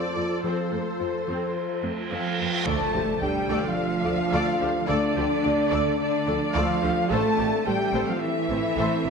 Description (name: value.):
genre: cinematic, hybrid orchestral and electronic film score.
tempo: 108 BPM.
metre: 4/4.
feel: straight.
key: D minor.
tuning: A4 = 440 Hz.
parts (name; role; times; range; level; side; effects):
warm symphonic violin section; melody; 0.0-9.1 s; Bb4 to D5; -34 LUFS; left 3 dB; none.
warm symphonic viola section; accompaniment; 0.0-9.1 s; A3 to A4; -33 LUFS; equal; none.
glassy FM pad; sustained chords; 0.0-9.1 s; E3 to E5; -31 LUFS; left 1 dB; ensemble chorus, built-in reverb.
thumb-piano-like synth pluck; arpeggios; 0.0-9.1 s; D3 to A4; -34 LUFS; right 2 dB; chorus, tape echo.
clear studio cello section; bass; 0.2-9.1 s; F2 to A3; -31 LUFS; right 6 dB; none.
reverse cymbal and impact; sound effects; 1.6-4.9 s; none; -33 LUFS; right 3 dB; none.
clear symphonic violin section; second line; 2.1-9.1 s; D5 to A5; -30 LUFS; left 2 dB; none.
mellow French horn section; sustained chords; 2.1-9.1 s; D4 to A4; -27 LUFS; left 2 dB; none.
bright symphonic double bass section; bass; 2.7-9.1 s; A1 to D2; -32 LUFS; right 4 dB; none.
room: wet scoring stage reverb, RT60 1.6 s.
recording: faint mains hum.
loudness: -22 LUFS.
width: side -5 dB against mid.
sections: 0.0-2.7 A section; 2.7-9.1 A section.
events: reverse cymbal 1.6-2.7; impact 2.7-4.9.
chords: 0.0 F; 2.7 Dm; 7.1 Am.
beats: | 0.44 1.00 1.55 2.11 | 2.67 3.22 3.78 4.33 | 4.89 5.44 6.00 6.55 | 7.11 7.67 8.22 8.78.